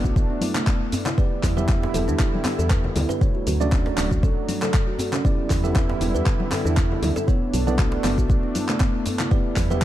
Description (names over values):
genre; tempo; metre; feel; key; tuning
afro house; 118 BPM; 4/4; swing 54% on 16ths; E minor; A4 = 442 Hz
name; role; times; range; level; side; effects
warm analog pad; sustained chords; 0.0-9.8 s; D3 to E4; -32 LUFS; right 2 dB; chorus, sidechain pumping
kalimba; arpeggios; 0.0-9.8 s; A3 to B4; -28 LUFS; equal; sidechain pumping, ping-pong delay
tine electric piano; stabs; 0.0-9.8 s; A3 to E5; -29 LUFS; right 3 dB; slow stereo tremolo, sidechain pumping, ping-pong delay
woody FM bass; bass; 0.0-9.8 s; D1 to E2; -25 LUFS; equal; sidechain pumping
electronic kick drum; drums; 0.0-9.8 s; none; -21 LUFS; equal; none
deep house drum kit; drums; 0.1-9.8 s; handclaps, hi-hat, shaker; -30 LUFS; equal; none
djembe; percussion; 0.2-9.8 s; none; -33 LUFS; equal; none
congas; percussion; 0.4-9.8 s; none; -32 LUFS; left 3 dB; none
room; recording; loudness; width
little or no reverb; dark, warm production; -19 LUFS; side -13 dB against mid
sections
0.0-9.8 A section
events
none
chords
0.0 Bm7; 1.2 Em7; 3.2 Dmaj7; 5.2 Em7; 7.3 Bm9; 9.3 Em7